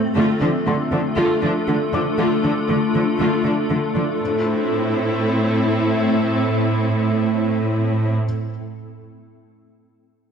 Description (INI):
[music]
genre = cinematic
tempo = 119 BPM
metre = 4/4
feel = straight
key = A minor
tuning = A4 = 440 Hz
[part]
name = swarming drone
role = sustained chords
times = 0.0-8.2 s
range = A3 to A4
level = -21 LUFS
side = left 2 dB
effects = built-in reverb
[part]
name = felt-muted upright piano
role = texture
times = 0.0-4.2 s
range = C6 to D6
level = -34 LUFS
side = left 4 dB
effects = digital delay
[part]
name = warm symphonic viola section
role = accompaniment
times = 0.2-8.2 s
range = D3 to F4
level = -23 LUFS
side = equal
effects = none
[part]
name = bright symphonic cello section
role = bass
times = 0.2-8.1 s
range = A2 to D3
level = -22 LUFS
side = right 3 dB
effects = none
[sound]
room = moderate scoring stage reverb, RT60 2.0 s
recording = dark, warm production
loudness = -17 LUFS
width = side -7 dB against mid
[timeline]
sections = 0.0-4.2 A section; 4.2-8.2 B section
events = none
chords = 0.2 Dm; 4.2 Am